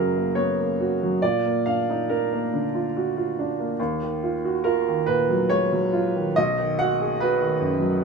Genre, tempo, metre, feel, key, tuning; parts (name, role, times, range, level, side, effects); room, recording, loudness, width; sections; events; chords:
neoclassical minimalist piano; 70 BPM; 3/4; rubato; A4 = 440 Hz
warm grand piano; solo; 0.0-8.0 s; B1 to F#5; -21 LUFS; right 2 dB
light reverb; -21 LUFS; side -4 dB against mid
0.0-8.0 A section
0.0 F#; 1.2 A#; 3.8 D#madd9; 6.3 B